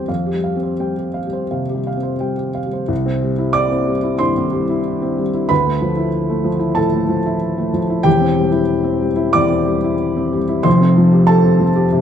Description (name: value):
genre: neoclassical minimalist piano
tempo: 84-96 BPM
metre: 4/4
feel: rubato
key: C major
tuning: A4 = 441 Hz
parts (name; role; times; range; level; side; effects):
- felt-muted upright piano; solo; 0.0-12.0 s; E1 to D6; -14 LUFS; equal; none
room: moderate recital hall reverb, RT60 1.7 s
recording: minimal, uncompressed stereo recording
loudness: -14 LUFS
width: side -8 dB against mid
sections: 0.0-2.9 A section; 2.9-12.0 B section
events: none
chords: 0.1 Fsus2; 2.9 C; 5.5 Dmadd9; 8.1 C/E; 10.7 Fsus2